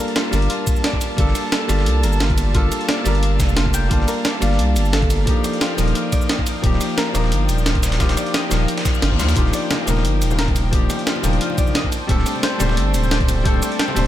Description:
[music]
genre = liquid drum and bass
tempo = 176 BPM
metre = 4/4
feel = swing 54% on 16ths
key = G minor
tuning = A4 = 440 Hz
[part]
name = warm grand piano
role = accompaniment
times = 0.0-14.1 s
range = F3 to A5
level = -24 LUFS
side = left 1 dB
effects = dub echo
[part]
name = warm studio string section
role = sustained chords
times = 0.0-14.1 s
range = Bb3 to A5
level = -28 LUFS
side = right 1 dB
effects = sidechain pumping
[part]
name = concert harp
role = arpeggios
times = 0.0-14.1 s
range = F4 to G5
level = -29 LUFS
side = left 2 dB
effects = vintage 12-bit sampler grit, dub echo
[part]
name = dusty soul sampler-style drum kit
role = drums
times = 0.1-14.1 s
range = hi-hat, snare drum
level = -29 LUFS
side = equal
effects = high-pass filter on snare, small room ambience, high-pass filter on hats, high-pass filter on room
[part]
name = breakbeat sampler-style drum kit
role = drums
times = 0.2-14.0 s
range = hi-hat, ride cymbal, rim click, shaker, snare drum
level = -24 LUFS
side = right 1 dB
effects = small room ambience
[part]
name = saturated sub bass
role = bass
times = 0.3-14.1 s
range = D1 to Eb2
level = -19 LUFS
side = equal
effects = none
[part]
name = electronic kick drum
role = drums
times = 0.7-13.5 s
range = none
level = -20 LUFS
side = equal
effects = small room ambience
[part]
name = reverse cymbal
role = sound effects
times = 8.9-9.4 s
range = none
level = -32 LUFS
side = left 7 dB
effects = none
[part]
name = congas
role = percussion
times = 9.4-14.0 s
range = none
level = -31 LUFS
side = left 3 dB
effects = none
[sound]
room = digital ambience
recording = none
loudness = -16 LUFS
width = side -12 dB against mid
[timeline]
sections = 0.0-14.1 A section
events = reverse cymbal 8.9-9.4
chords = 0.0 Gm9; 5.3 Ebmaj9; 11.9 D7sus4

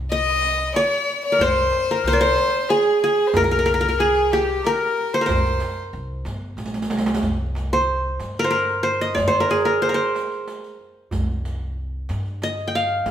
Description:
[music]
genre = Arabic maqam ensemble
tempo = 92 BPM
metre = 3/4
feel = straight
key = C maqam bayati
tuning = A4 = 439 Hz
[part]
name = upright bass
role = bass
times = 0.0-13.1 s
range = G1 to G2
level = -27 LUFS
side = equal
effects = none
[part]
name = qanun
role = melody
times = 0.1-13.1 s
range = G4 to G5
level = -19 LUFS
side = right 1 dB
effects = none
[part]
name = warm violin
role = second line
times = 0.1-5.7 s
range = G4 to Eb5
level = -22 LUFS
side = left 5 dB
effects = none
[part]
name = riq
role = percussion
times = 0.1-13.1 s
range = none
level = -29 LUFS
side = right 2 dB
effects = none
[part]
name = darbuka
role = percussion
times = 0.7-13.1 s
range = none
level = -32 LUFS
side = right 2 dB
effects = none
[sound]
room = wet large studio reverb, RT60 1.2 s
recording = band playing live in one room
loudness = -18 LUFS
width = side -10 dB against mid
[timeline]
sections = 0.0-7.2 A section; 7.2-13.1 B section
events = drum fill 6.6-7.2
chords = none

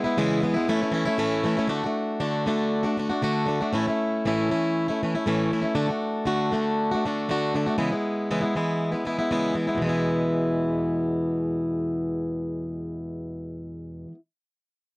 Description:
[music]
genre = rock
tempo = 118 BPM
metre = 4/4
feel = straight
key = E mixolydian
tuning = A4 = 440 Hz
[part]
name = picked plugged-in swing-style acoustic guitar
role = solo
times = 0.0-14.2 s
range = E2 to F#4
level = -23 LUFS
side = equal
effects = none
[sound]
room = little or no reverb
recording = dry, close 1970s-style studio recording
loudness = -23 LUFS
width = side -24 dB against mid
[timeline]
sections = 0.0-1.7 A section; 1.7-9.8 B section; 9.8-13.9 C section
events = none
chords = 0.0 C#m7; 0.7 A; 1.7 D; 3.7 A; 5.8 D; 7.8 C#m7; 9.8 E

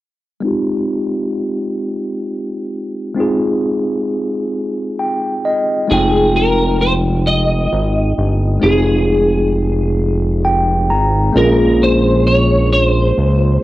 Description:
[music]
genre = slow six-eight R&B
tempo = 44 BPM (dotted quarters)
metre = 6/8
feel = straight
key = F minor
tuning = A4 = 440 Hz
[part]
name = tine electric piano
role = accompaniment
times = 0.4-13.6 s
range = Ab3 to Bb5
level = -16 LUFS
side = equal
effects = medium stereo tremolo, low-pass filter, cassette tape, plate reverb
[part]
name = electric guitar at the edge of break-up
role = melody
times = 5.9-13.6 s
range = Ab4 to Eb5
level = -17 LUFS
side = equal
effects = ensemble chorus, cassette tape, plate reverb
[part]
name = fat analog bass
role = bass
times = 5.9-13.6 s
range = F1 to Db2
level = -15 LUFS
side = equal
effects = none
[sound]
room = light reverb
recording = home recording on cassette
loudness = -13 LUFS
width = side -16 dB against mid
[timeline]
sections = 0.4-5.9 A section; 5.9-13.6 B section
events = filter sweep on tine electric piano 0.4-5.9; tine electric piano fill 4.5-5.9, 10.0-11.3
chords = 0.4 Fm9; 11.3 Bbm9

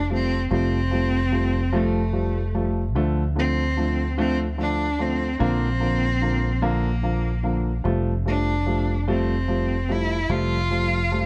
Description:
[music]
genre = six-eight pop ballad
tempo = 49 BPM (dotted quarters)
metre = 6/8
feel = straight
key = F major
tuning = A4 = 440 Hz
[part]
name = rich cello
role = melody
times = 0.0-11.3 s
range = A3 to F4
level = -28 LUFS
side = equal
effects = delay
[part]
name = fingered electric bass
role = bass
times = 0.0-11.3 s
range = F1 to D2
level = -27 LUFS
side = equal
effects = none
[part]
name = dark upright piano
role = accompaniment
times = 0.1-11.3 s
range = D3 to Bb3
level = -28 LUFS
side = equal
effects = none
[sound]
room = light reverb, studio ambience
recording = none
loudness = -23 LUFS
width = mono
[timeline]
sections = 0.0-11.3 A section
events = none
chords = 0.0 Fadd9; 3.0 Dm; 5.4 Bb; 7.9 Fadd9

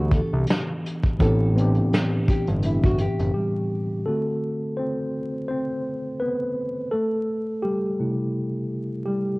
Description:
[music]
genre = lo-fi hip hop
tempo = 84 BPM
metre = 4/4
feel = swing 57% on 16ths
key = unclear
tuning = A4 = 440 Hz
[part]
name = nylon-string guitar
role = melody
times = 0.0-3.3 s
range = E4 to A4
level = -31 LUFS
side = left 1 dB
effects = low-pass filter, cassette tape
[part]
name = mellow tine electric piano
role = accompaniment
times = 0.0-9.4 s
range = A2 to C5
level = -24 LUFS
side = equal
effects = medium stereo tremolo, low-pass filter, cassette tape
[part]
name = fat analog bass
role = bass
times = 0.0-3.3 s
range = F#1 to D2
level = -23 LUFS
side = equal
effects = none
[part]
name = vintage brush drum kit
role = drums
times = 0.1-3.3 s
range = hi-hat, kick drum, snare drum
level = -23 LUFS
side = equal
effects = vintage 12-bit sampler grit, cassette tape
[sound]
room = moderate spring reverb, RT60 2.4 s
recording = home recording on cassette, vinyl crackle, nothing above 11.0 kHz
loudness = -22 LUFS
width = side -24 dB against mid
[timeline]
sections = 0.0-4.1 A section; 4.1-9.4 B section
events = break 3.3-4.1; tine electric piano solo 4.1-9.4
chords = 0.0 Em9; 1.2 Am11; 4.1 D6; 6.9 C6

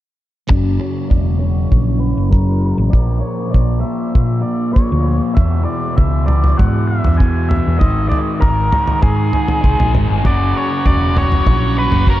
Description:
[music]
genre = psychedelic rock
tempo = 98 BPM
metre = 4/4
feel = straight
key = unclear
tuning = A4 = 444 Hz
[part]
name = octave-fuzz lead guitar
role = melody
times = 0.5-12.2 s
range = G#4 to G#5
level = -22 LUFS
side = equal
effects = distortion, low-pass filter, tape echo
[part]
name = thick fuzz guitar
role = riff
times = 0.5-12.2 s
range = E2 to A#3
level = -20 LUFS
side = left 1 dB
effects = distortion, phaser, low-pass filter
[part]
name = hollow-body short-scale fingered electric bass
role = bass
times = 0.5-12.2 s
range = E1 to A#2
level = -16 LUFS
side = equal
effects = none
[part]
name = cloth-damped thuddy drum kit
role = drums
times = 0.5-12.2 s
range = kick drum, toms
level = -15 LUFS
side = equal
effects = none
[part]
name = overdriven combo organ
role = sustained chords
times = 10.2-12.2 s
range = C#3 to A#5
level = -25 LUFS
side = right 3 dB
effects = low-pass filter
[sound]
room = light reverb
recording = none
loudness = -13 LUFS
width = side -14 dB against mid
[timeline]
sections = 0.5-12.2 A section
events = filter sweep 0.5-12.2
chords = 0.5 F#; 2.9 A#; 5.4 E; 7.8 G#sus2; 10.2 F#

